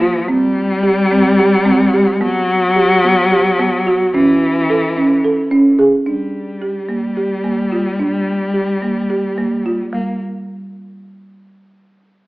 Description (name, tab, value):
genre	contemporary instrumental, chamber music in an uneven meter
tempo	218 BPM (eighths)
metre	7/8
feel	straight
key	unclear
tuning	A4 = 440 Hz
part	dark cello	second line	0.0-10.2 s	E3 to Bb3	-16 LUFS	left 1 dB	none
part	folk marimba with soft mallets	arpeggios	0.0-10.2 s	G3 to A4	-15 LUFS	right 2 dB	none
room	moderate recital hall reverb, RT60 1.7 s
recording	AM radio sound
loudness	-12 LUFS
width	side -20 dB against mid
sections	0.0-6.1 A section; 6.1-9.9 B section; 9.9-11.9 C section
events	none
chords	0.3 C5; 2.2 Gmaj7/F#; 4.1 A; 6.1 Gm; 9.9 N.C.